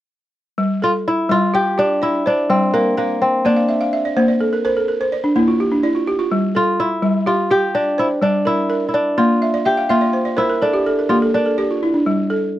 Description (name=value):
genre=west african traditional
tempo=84 BPM (dotted quarters)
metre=12/8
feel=straight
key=G dorian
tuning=A4 = 440 Hz
part: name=balafon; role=arpeggios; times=0.6-12.6 s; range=G3 to G5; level=-17 LUFS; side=equal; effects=none
part: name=kora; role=melody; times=0.8-12.6 s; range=Bb3 to G4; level=-18 LUFS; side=equal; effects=none
room=light reverb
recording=dry, close 1970s-style studio recording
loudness=-15 LUFS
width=side -13 dB against mid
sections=0.6-12.6 A section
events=balafon fill 3.4-6.3, 9.4-12.1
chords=0.6 Gm; 3.4 Bb; 6.3 Gm; 9.2 Bb; 12.1 G5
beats=| 0.58 1.29 2.01 2.73 | 3.44 4.16 4.88 5.59 | 6.31 7.03 7.75 8.46 | 9.18 9.90 10.62 11.34 | 12.06